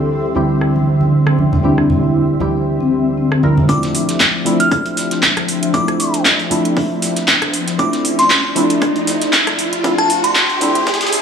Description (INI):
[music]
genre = deep house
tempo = 117 BPM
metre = 4/4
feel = swing 55% on 16ths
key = D minor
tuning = A4 = 440 Hz
[part]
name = vibraphone with soft mallets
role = melody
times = 0.0-3.5 s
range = C4 to A4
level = -19 LUFS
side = left 3 dB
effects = analog delay
[part]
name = hollow soft pad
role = sustained chords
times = 0.0-11.2 s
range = D3 to E5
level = -21 LUFS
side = left 1 dB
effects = ensemble chorus, sidechain pumping
[part]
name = percussive organ stab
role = stabs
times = 0.0-11.2 s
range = D2 to Bb4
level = -18 LUFS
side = right 1 dB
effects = analog chorus, sidechain pumping, analog delay
[part]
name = granular cloud pad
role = texture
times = 0.0-11.2 s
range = D4 to E5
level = -28 LUFS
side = equal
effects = built-in reverb, sidechain pumping
[part]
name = house drum kit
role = drums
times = 0.6-11.2 s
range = handclaps, hi-hat, rim click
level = -16 LUFS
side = equal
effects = low-pass filter on snare, low-pass filter on hats
[part]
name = congas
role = percussion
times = 0.8-3.7 s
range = none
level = -19 LUFS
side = right 1 dB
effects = none
[part]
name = glassy synth bell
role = melody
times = 3.7-10.8 s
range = A5 to F6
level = -19 LUFS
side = left 1 dB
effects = chorus, analog delay
[part]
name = breakbeat sampler-style drum kit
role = drums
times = 3.7-11.2 s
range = hi-hat, snare drum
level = -27 LUFS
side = left 1 dB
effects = high-pass filter on hats, high-pass filter on snare
[part]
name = electronic kick drum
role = drums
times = 3.7-11.0 s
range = none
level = -20 LUFS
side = equal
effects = high-pass filter on kick
[part]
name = riser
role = sound effects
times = 6.0-11.2 s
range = none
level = -22 LUFS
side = equal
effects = none
[sound]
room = moderate lush hall reverb, RT60 2.2 s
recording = high-pass filter, small room ambience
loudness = -12 LUFS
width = side -7 dB against mid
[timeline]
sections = 0.0-3.7 A section; 3.7-11.2 B section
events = filter sweep on synth stab 0.0-3.7; filter sweep on analog synth pad 0.0-3.7; build-up 3.7-11.2; riser 6.0-11.2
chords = 0.0 C/D; 3.7 Dm9